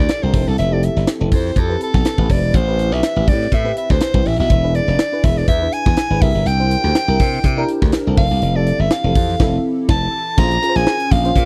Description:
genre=polished 1980s jazz-funk pop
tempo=122 BPM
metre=4/4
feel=swing 54% on 16ths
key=unclear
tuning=A4 = 440 Hz
part: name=clear soprano saxophone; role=melody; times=0.0-11.5 s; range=A4 to Bb5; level=-23 LUFS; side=equal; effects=none
part: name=FM electric piano with soft pad layer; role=accompaniment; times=0.0-11.5 s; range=E3 to C5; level=-25 LUFS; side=equal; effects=lush chorus
part: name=glassy slap bass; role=bass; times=0.0-11.5 s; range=E1 to C3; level=-20 LUFS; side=equal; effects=none
part: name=crisp fusion drum kit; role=drums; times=0.1-11.5 s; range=crash cymbal, hi-hat, kick drum, snare drum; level=-20 LUFS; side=equal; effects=none
room=small room ambience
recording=dry, close 1970s-style studio recording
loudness=-16 LUFS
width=mono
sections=0.0-10.4 A section; 10.4-11.5 B section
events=soprano saxophone solo 0.0-10.4; band accent 9.4-10.4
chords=0.3 Fmaj7; 2.5 Am7; 4.5 E7; 6.2 C7; 8.2 Fmaj7; 10.4 Bbm7

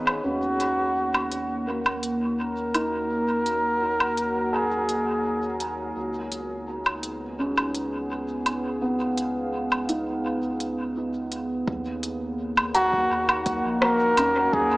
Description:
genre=ambient dub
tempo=84 BPM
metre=4/4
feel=straight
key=Eb minor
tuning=A4 = 444 Hz
part: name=deep dark ambient pad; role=sustained chords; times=0.0-14.8 s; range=Bb3 to Gb5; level=-29 LUFS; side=equal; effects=chorus, built-in reverb
part: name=felt-muted upright piano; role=arpeggios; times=0.0-14.8 s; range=Bb3 to Bb5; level=-30 LUFS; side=right 1 dB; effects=low-pass filter, tape echo
part: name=soft dub sub bass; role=bass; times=0.0-14.8 s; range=Ab1 to Eb2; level=-40 LUFS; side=equal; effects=none
part: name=organic electronic drum kit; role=drums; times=0.1-14.3 s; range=hi-hat, rim click, woodblock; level=-27 LUFS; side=equal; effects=overdrive, small room ambience, dub echo
part: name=trumpet with bucket mute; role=melody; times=0.2-5.6, 12.7-14.8 s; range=Gb4 to Bb4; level=-25 LUFS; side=equal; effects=dub echo
part: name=electronic kick drum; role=drums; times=11.7-14.7 s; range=none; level=-31 LUFS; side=equal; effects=overdrive, small room ambience
room=moderate lush hall reverb, RT60 1.9 s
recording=small speaker sound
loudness=-23 LUFS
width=side -21 dB against mid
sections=0.2-11.7 A section; 11.7-14.8 B section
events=none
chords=0.2 Ebm7; 6.0 Db9; 11.7 Ebm7

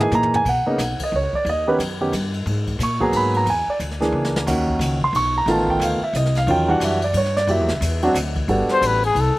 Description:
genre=jazz, small-group swing and bop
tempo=179 BPM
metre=3/4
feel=swing 62% on 8ths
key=unclear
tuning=A4 = 440 Hz
part: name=warm grand piano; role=accompaniment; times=0.0-9.0 s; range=C#3 to C#6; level=-19 LUFS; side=right 1 dB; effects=slapback echo
part: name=upright bass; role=bass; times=0.0-9.4 s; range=G1 to B2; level=-23 LUFS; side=left 1 dB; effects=none
part: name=jazz brush drum kit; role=drums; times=0.0-9.4 s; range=crash cymbal, hi-hat, kick drum, ride cymbal, snare drum, toms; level=-29 LUFS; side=left 1 dB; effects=none
part: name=breathy trumpet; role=melody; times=8.7-9.4 s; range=Ab4 to C5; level=-17 LUFS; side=left 3 dB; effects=none
room=little or no reverb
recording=recorded outdoors, with no room sound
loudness=-18 LUFS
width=side -18 dB against mid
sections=0.5-8.5 A section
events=drum fill 0.0-0.5, 4.1-4.5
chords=0.5 Badd9; 1.5 D#7alt; 2.5 G#m9; 3.5 E7#11; 4.5 D#m7; 5.5 F7#11; 6.5 Em9; 7.5 F#7b9; 8.2 Dsus2; 8.5 Gmaj9

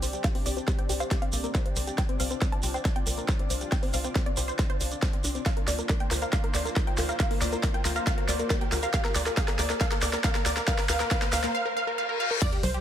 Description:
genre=uplifting trance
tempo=138 BPM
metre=4/4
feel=straight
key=unclear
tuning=A4 = 440 Hz
part: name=wide unison pluck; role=melody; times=0.0-12.8 s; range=G4 to A5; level=-32 LUFS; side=right 1 dB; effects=sidechain pumping, tape echo
part: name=lush unison pad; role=sustained chords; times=0.0-12.8 s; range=G3 to D5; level=-38 LUFS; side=equal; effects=chorus, phaser, sidechain pumping
part: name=tight sequenced synth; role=arpeggios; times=0.0-11.5 s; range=Bb3 to C5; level=-36 LUFS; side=left 5 dB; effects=chorus, sidechain pumping, tape echo
part: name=tight sequencer bass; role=bass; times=0.0-12.8 s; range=C2 to D2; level=-32 LUFS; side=equal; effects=sidechain pumping
part: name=big-room dance drum kit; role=drums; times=0.0-12.8 s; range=congas, crash cymbal, hi-hat, snare drum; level=-33 LUFS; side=right 1 dB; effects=overdrive, high-pass filter on hats, small room ambience, high-pass filter on snare, high-pass filter on perc, high-pass filter on cymbals
part: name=shekere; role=percussion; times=0.0-11.5 s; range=none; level=-37 LUFS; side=right 4 dB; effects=none
part: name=riser, reverse cymbal and sub drop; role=sound effects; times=2.3-12.8 s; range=none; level=-38 LUFS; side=left 1 dB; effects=none
part: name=electronic kick drum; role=drums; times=0.2-12.5 s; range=none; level=-27 LUFS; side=equal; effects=overdrive, small room ambience
room=light reverb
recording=none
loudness=-25 LUFS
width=side -10 dB against mid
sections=0.0-12.4 A section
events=build-up 0.0-12.4; drum fill 0.0-11.5; filter sweep on synth pluck 0.0-12.4; filter sweep on synth arpeggio sound 0.0-12.4; riser 2.3-11.5; reverse cymbal 11.5-12.4; impact 12.4-12.8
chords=0.0 Csus2; 5.5 Bbadd9/D

